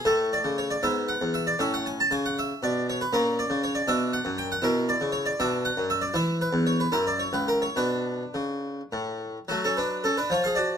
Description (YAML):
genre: classical, baroque-style suite movement for harpsichord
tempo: 68-82 BPM (dotted quarters)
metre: 6/8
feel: rubato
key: B minor from 3.1 s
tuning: A4 = 444 Hz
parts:
  - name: harpsichord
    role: solo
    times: 0.0-10.8 s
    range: C#2 to A5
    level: -24 LUFS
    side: equal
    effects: none
room: light reverb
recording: close, detailed microphones, lossy compression artefacts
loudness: -24 LUFS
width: side -8 dB against mid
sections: 0.0-9.5 A section; 9.5-10.8 A section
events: none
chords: 0.1 A; 0.8 E/G#; 1.6 A; 3.1 A#m; 3.9 Bm; 4.6 Bmadd11; 5.4 Bm; 6.2 N.C.; 6.9 F#5; 7.8 Bm; 9.5 F#m